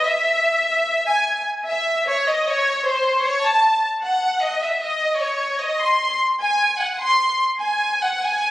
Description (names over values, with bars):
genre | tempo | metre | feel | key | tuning
mexican folk | 151 BPM | 3/4 | straight | C# harmonic minor | A4 = 440 Hz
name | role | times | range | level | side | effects
rich chamber violin section | solo | 0.0-8.5 s | B#4 to B#5 | -17 LUFS | equal | none
room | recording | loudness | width
wet recital hall reverb, RT60 1.7 s | recorded on a phone in the room, studio reverb, compression | -17 LUFS | side -16 dB against mid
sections
0.0-1.3 A section; 1.3-8.5 B section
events
none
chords
none